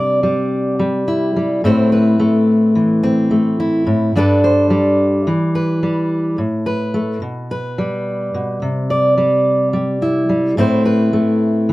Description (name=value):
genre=folk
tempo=108 BPM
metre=4/4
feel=straight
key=unclear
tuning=A4 = 439 Hz
part: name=fingerpicked steel-string acoustic guitar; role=solo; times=0.0-11.7 s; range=G2 to D5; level=-14 LUFS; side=equal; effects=none
room=moderate studio reverb, RT60 0.6 s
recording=band playing live in one room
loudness=-14 LUFS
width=side -18 dB against mid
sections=0.0-11.7 A section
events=none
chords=0.0 Cadd9; 1.6 Am; 4.2 Gadd9; 5.3 Em; 6.4 Asus2; 7.2 G/B; 8.6 Cadd9; 10.6 Am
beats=0.24 0.80 1.36 | 1.92 2.48 3.04 3.60 | 4.16 4.72 5.28 5.84 | 6.40 6.95 7.51 8.07 | 8.63 9.19 9.74 10.30 | 10.86 11.42